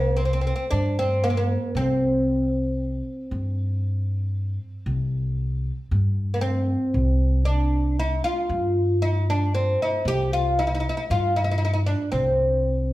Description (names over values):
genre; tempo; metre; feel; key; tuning
Arabic maqam ensemble; 116 BPM (eighths); 10/8; straight; C maqam rast; A4 = 440 Hz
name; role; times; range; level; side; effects
oud; melody; 0.0-12.9 s; Bb3+50c to G4; -24 LUFS; equal; none
upright bass; bass; 0.0-12.9 s; C2 to G2; -23 LUFS; equal; none
room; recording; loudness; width
wet large studio reverb, RT60 1.0 s; band playing live in one room; -21 LUFS; side -16 dB against mid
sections
0.0-12.9 A section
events
none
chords
none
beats
0.19 0.71 1.23 | 1.75 2.27 2.79 3.30 3.82 4.34 4.86 5.38 5.90 6.42 | 6.93 7.45 7.97 8.49 9.01 9.53 10.05 10.56 11.08 11.60 | 12.12 12.64